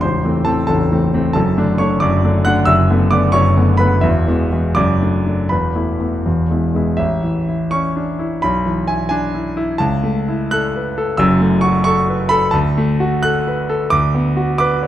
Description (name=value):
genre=classical, virtuoso piano study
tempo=80-92 BPM (dotted quarters)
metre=6/8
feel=rubato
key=A major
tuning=A4 = 439 Hz
part: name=warm concert grand piano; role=solo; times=0.0-14.9 s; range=A0 to F#6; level=-14 LUFS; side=equal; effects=none
room=wet recital hall reverb, RT60 1.5 s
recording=none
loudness=-14 LUFS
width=side -12 dB against mid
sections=0.0-7.0 A section; 7.0-14.9 B section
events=none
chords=0.0 Am; 1.4 D/F#; 2.7 Bm7/F#; 4.0 E; 4.8 D/F#; 5.5 Esus4; 6.3 E; 7.0 A; 8.4 E7/B; 9.8 A/C#; 11.2 F#m7; 12.5 D; 13.9 Bm/D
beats=| 0.02 0.69 | 1.36 2.03 | 2.69 3.36 | 4.04 4.78 | 5.51 6.26 | 6.99 7.73 | 8.44 9.12 | 9.80 10.53 | 11.20 11.87 | 12.54 13.24 | 13.92 14.60